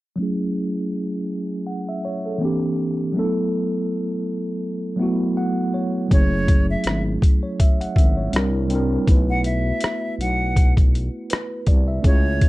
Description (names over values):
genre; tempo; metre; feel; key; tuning
lo-fi hip hop; 81 BPM; 4/4; swing 56% on 16ths; F# minor; A4 = 440 Hz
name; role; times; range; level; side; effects
mellow tine electric piano; accompaniment; 0.2-12.5 s; E3 to F#5; -23 LUFS; equal; fast stereo tremolo, cassette tape, low-pass filter
bright reedy jazz flute; melody; 6.1-12.5 s; C#5 to F#5; -26 LUFS; equal; none
growling FM bass; bass; 6.1-12.5 s; F#1 to C#2; -23 LUFS; equal; none
boom bap sampler-style drum kit; drums; 6.1-12.5 s; hi-hat, kick drum, rim click; -16 LUFS; equal; none
room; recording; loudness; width
light reverb; dark, warm production; -18 LUFS; side -18 dB against mid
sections
0.2-6.1 A section; 6.1-12.5 B section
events
filter sweep on tine electric piano 0.2-6.1; tine electric piano fill 5.0-6.1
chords
0.2 F#m9; 2.4 C9; 3.2 B7sus4; 6.1 F#m9; 8.3 C9; 9.1 B7sus4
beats
| 0.19 0.93 1.67 2.41 | 3.15 3.89 4.63 5.37 | 6.11 6.86 7.60 8.34 | 9.08 9.82 10.56 11.30 | 12.04